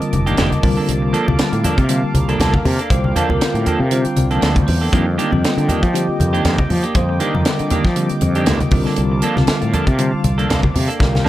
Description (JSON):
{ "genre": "electric jazz fusion", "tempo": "119 BPM", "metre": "4/4", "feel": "swing 55% on 16ths", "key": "F mixolydian", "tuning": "A4 = 439 Hz", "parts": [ { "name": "bell-like tine electric piano", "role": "accompaniment", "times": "0.0-11.3 s", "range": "D3 to G5", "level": "-21 LUFS", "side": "left 1 dB", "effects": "medium stereo tremolo, phaser" }, { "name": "chorused pulse-width pad", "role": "sustained chords", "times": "0.0-11.3 s", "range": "Bb3 to D6", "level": "-25 LUFS", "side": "equal", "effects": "none" }, { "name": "fretless electric bass", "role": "bass", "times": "0.0-11.2 s", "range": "F1 to F3", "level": "-19 LUFS", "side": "equal", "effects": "none" }, { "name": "tight funk drum kit", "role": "drums", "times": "0.0-11.3 s", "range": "hi-hat, kick drum, snare drum", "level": "-20 LUFS", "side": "equal", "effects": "none" }, { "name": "congas", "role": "percussion", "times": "0.1-11.3 s", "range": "none", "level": "-21 LUFS", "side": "left 1 dB", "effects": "none" }, { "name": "clean electric guitar", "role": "stabs", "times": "0.3-11.3 s", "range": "Eb3 to A4", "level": "-23 LUFS", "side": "right 3 dB", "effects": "wide subtle chorus" } ], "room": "light reverb, studio ambience", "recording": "none", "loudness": "-14 LUFS", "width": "side -14 dB against mid", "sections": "0.0-11.3 A section", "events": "tine electric piano fill 3.4-4.9; drum fill 11.0", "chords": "0.0 F13sus4; 0.6 C13sus4; 4.9 F13sus4; 8.7 C13sus4" }